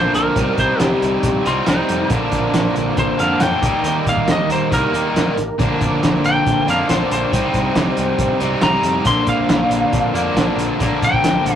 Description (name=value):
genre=classic rock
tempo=138 BPM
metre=4/4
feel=straight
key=unclear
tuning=A4 = 440 Hz
part: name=lightly driven lead guitar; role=melody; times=0.0-11.6 s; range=Eb4 to C6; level=-20 LUFS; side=left 1 dB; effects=none
part: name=tonewheel organ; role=sustained chords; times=0.0-11.6 s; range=Bb3 to C5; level=-29 LUFS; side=equal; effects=none
part: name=distorted electric guitar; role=riff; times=0.0-11.6 s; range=Bb2 to Eb4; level=-19 LUFS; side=equal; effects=distortion
part: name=overdriven picked electric bass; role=bass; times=0.0-11.6 s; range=A1 to F2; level=-26 LUFS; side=equal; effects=none
part: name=cloth-damped thuddy drum kit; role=drums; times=0.1-11.6 s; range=hi-hat, kick drum, snare drum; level=-20 LUFS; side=equal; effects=none
room=wet small room reverb, RT60 0.5 s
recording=rough rehearsal-room recording, tube saturation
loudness=-15 LUFS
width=side -9 dB against mid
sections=0.0-11.6 A section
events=lead electric guitar solo 0.0-11.6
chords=0.4 Cm; 2.1 Bb; 3.6 Eb; 5.6 Bb; 7.3 Cm; 9.1 Bb